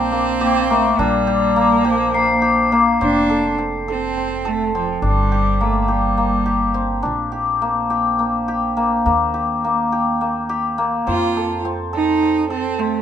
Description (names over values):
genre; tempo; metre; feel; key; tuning
contemporary instrumental, chamber music in an uneven meter; 208 BPM (eighths); 7/8; straight; Bb major; A4 = 440 Hz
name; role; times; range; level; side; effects
bright cello; melody; 0.0-6.8, 11.1-13.0 s; F3 to F4; -21 LUFS; right 4 dB; none
dark clarinet; second line; 0.0-3.0 s; F3 to Bb3; -20 LUFS; left 4 dB; none
cimbalom; arpeggios; 0.0-13.0 s; Bb3 to A4; -18 LUFS; left 2 dB; none
upright bass; bass; 0.0-13.0 s; F1 to F2; -26 LUFS; equal; none
crotales; texture; 2.1-3.3 s; C7; -25 LUFS; left 2 dB; none
room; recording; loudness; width
light reverb; minimal, uncompressed stereo recording; -16 LUFS; side -9 dB against mid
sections
0.0-3.0 A section; 3.0-13.0 A section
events
none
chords
0.0 Bb6; 3.0 F; 5.0 Gm; 7.0 Bb6; 9.1 Eb; 11.1 F7